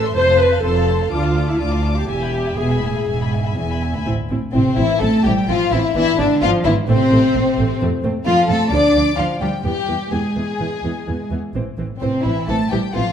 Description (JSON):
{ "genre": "quick classical-period movement for string orchestra", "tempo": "127 BPM", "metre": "4/4", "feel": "rubato", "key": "A minor", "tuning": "A4 = 440 Hz", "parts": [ { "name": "dark studio violin section", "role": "melody", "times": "0.0-13.1 s", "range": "C5 to D6", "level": "-27 LUFS", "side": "left 5 dB", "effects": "none" }, { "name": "warm chamber violin section", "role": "second line", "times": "0.0-13.1 s", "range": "C4 to D6", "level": "-20 LUFS", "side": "left 3 dB", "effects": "none" }, { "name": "dark studio viola section", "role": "accompaniment", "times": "0.0-13.0 s", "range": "E3 to C5", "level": "-22 LUFS", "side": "equal", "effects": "none" }, { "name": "dark studio cello section", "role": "bass", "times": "0.0-13.1 s", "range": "D2 to D4", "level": "-22 LUFS", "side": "right 2 dB", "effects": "none" }, { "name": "warm studio double bass section", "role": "bass", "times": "0.0-13.0 s", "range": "E1 to F2", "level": "-22 LUFS", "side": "right 2 dB", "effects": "none" } ], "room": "wet recital hall reverb, RT60 1.4 s", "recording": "dark, warm production", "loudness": "-16 LUFS", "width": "side -8 dB against mid", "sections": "0.0-4.1 A section; 4.1-13.1 B section", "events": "none", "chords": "0.2 F; 1.1 Dm; 2.1 E; 4.1 Am; 5.9 E7/G#; 6.9 Am; 7.8 F; 8.7 Dm; 9.6 E; 11.5 Am" }